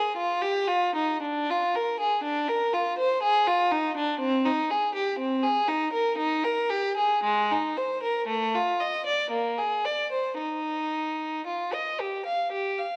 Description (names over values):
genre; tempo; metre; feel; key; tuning
classical, baroque-style suite movement for unaccompanied violin; 54-62 BPM; 3/4; rubato; Eb major; A4 = 442 Hz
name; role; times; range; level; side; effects
rich violin; solo; 0.0-13.0 s; Ab3 to F5; -27 LUFS; equal; none
room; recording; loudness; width
moderate recital hall reverb, RT60 1.7 s; worn, warbling old tape, cassette tape, warbly pitch drift, nothing above 10.6 kHz; -27 LUFS; mono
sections
0.0-13.0 A section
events
none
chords
none